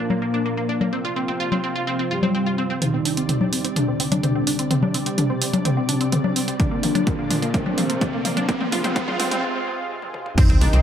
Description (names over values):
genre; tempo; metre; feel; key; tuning
melodic techno; 127 BPM; 4/4; straight; C minor; A4 = 440 Hz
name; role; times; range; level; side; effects
analog synth brass; melody; 0.0-10.8 s; C3 to Eb4; -26 LUFS; left 1 dB; chorus, sidechain pumping, tape echo
lush unison pad; sustained chords; 0.0-10.8 s; Bb2 to D5; -29 LUFS; right 1 dB; chorus, sidechain pumping
wide unison pluck; arpeggios; 0.0-10.8 s; Bb3 to D5; -26 LUFS; right 1 dB; phaser, sidechain pumping, dub echo
punchy analog drum machine; drums; 0.1-10.8 s; congas, crash cymbal, hi-hat, toms; -23 LUFS; left 1 dB; overdrive
riser and sub drop; sound effects; 5.5-10.8 s; none; -29 LUFS; right 1 dB; none
electronic kick drum; drums; 6.6-10.5 s; none; -21 LUFS; equal; overdrive
tight sequencer bass; bass; 10.5-10.8 s; C2; -16 LUFS; equal; sidechain pumping
room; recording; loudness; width
moderate spring reverb, RT60 1.1 s; echo-heavy mix, high-pass filter; -19 LUFS; side -9 dB against mid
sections
0.0-2.8 A section; 2.8-10.4 B section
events
filter sweep on drum 0.0-2.8; build-up 2.8-10.4; drum fill 2.8-9.4, 10.0-10.4; filter sweep on synth pluck 2.8-10.4; filter sweep on analog polysynth 2.8-10.4; riser 5.5-9.4; break 9.4-10.4; impact 10.4-10.8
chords
0.0 Bb; 0.9 F5; 2.8 Cmadd9; 6.6 Bb; 8.5 Fm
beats
0.46 | 0.93 1.40 1.87 2.35 | 2.82 3.29 3.76 4.24 | 4.71 5.18 5.65 6.12 | 6.60 7.07 7.54 8.02 | 8.49 8.96 9.43 9.90 | 10.38